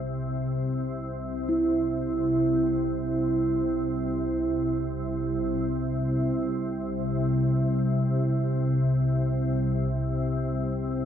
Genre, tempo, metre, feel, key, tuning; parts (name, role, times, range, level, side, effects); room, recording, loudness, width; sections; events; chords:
world meditative, free-time meditation music; free time; C major pentatonic; A4 = 440 Hz
organ-like drone; drone; 0.0-11.1 s; C2 to C3; -26 LUFS; left 1 dB; ensemble chorus, built-in reverb
quartz singing bowl; texture; 1.5-10.5 s; E4; -28 LUFS; right 3 dB
wet scoring stage reverb, RT60 1.9 s; -24 LUFS; side -9 dB against mid
0.0-11.1 A section